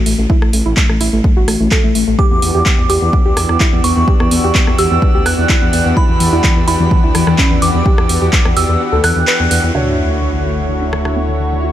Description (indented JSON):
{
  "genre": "progressive house",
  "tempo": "127 BPM",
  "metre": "4/4",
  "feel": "straight",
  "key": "E dorian",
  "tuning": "A4 = 441 Hz",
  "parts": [
    { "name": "dark detuned saw bass", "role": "bass", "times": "0.0-11.7 s", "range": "G1 to E2", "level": "-17 LUFS", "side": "equal", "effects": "sidechain pumping" },
    { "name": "soft round pluck", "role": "arpeggios", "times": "0.1-11.7 s", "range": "D3 to B4", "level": "-18 LUFS", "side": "left 1 dB", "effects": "chorus, sidechain pumping, ping-pong delay" },
    { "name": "house drum kit", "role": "drums", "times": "0.1-11.1 s", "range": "handclaps, hi-hat, rim click", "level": "-20 LUFS", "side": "equal", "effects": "none" },
    { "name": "electronic kick drum", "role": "drums", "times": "0.3-8.4 s", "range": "none", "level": "-14 LUFS", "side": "equal", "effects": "none" },
    { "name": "glassy synth bell", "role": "melody", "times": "2.2-9.7 s", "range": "B5 to F#6", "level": "-19 LUFS", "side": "right 2 dB", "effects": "chorus, sidechain pumping, ping-pong delay" },
    { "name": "lush unison pad", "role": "sustained chords", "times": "2.2-11.7 s", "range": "D3 to C#5", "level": "-21 LUFS", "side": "equal", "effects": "chorus, sidechain pumping" },
    { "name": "drifting glass-harmonics texture", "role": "texture", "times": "3.0-9.8 s", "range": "D5 to E6", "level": "-29 LUFS", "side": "left 2 dB", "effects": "chorus, built-in reverb, sidechain pumping" },
    { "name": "felt-muted upright piano", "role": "stabs", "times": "9.7-11.7 s", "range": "D4 to C#5", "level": "-23 LUFS", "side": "right 2 dB", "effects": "sidechain pumping, low-pass filter, ping-pong delay" },
    { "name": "sub drop", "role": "sound effects", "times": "9.7-11.6 s", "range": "none", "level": "-25 LUFS", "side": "equal", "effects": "none" }
  ],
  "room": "digital ambience",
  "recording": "none",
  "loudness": "-11 LUFS",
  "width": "side -12 dB against mid",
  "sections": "0.0-9.7 A section; 9.7-11.7 B section",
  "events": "kick drops out 8.8-9.7; band accent 9.3; impact 9.7-11.6",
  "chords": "0.0 N.C.; 2.2 Em7; 9.7 Dmaj7"
}